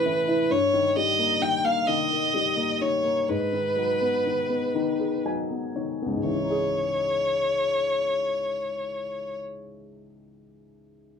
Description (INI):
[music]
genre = pop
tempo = 38-44 BPM (dotted quarters)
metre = 6/8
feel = straight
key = C# minor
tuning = A4 = 439 Hz
[part]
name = warm violin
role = melody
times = 0.0-9.4 s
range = B4 to G5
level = -24 LUFS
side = equal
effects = none
[part]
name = warm upright piano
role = accompaniment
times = 0.0-11.2 s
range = C#2 to G#5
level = -28 LUFS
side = left 3 dB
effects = none
[sound]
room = moderate small room ambience, RT60 0.5 s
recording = band playing live in one room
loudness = -23 LUFS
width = side -6 dB against mid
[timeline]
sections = 0.0-6.3 A section; 6.3-9.5 B section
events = slowing down 0.5-6.3; upright piano fill 4.7-6.3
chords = 0.0 A; 0.5 D#/G; 3.3 G#m7; 6.3 C#madd9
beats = | 0.50 1.87 | 3.28 4.74 | 6.28 7.87